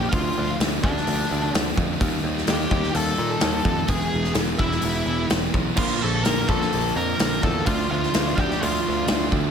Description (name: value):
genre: quiet-loud alternative rock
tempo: 127 BPM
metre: 4/4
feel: straight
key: unclear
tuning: A4 = 439 Hz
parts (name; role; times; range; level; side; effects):
- octave-fuzz lead guitar; melody; 0.0-9.3 s; D4 to Bb5; -27 LUFS; left 1 dB; distortion
- thick fuzz guitar; riff; 0.0-9.5 s; Bb2 to E4; -29 LUFS; left 13 dB; distortion
- thick fuzz guitar; riff; 0.0-9.5 s; Bb2 to E4; -28 LUFS; right 13 dB; distortion
- picked electric bass; bass; 0.0-9.5 s; E1 to Bb2; -28 LUFS; equal; none
- big rock drum kit; drums; 0.1-9.4 s; crash cymbal, hi-hat, kick drum, snare drum; -25 LUFS; equal; none
- biting overdriven guitar; riff; 5.8-9.5 s; Bb2 to D4; -30 LUFS; left 1 dB; none
room: light reverb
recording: none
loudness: -20 LUFS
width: side -7 dB against mid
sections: 0.0-9.5 A section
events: none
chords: 0.1 Dm; 2.0 Eb; 3.9 E; 5.8 Bb; 7.7 Dm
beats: | 0.12 0.60 1.07 1.54 | 2.01 2.48 2.95 3.42 | 3.89 4.36 4.83 5.31 | 5.78 6.25 6.72 7.19 | 7.67 8.14 8.61 9.08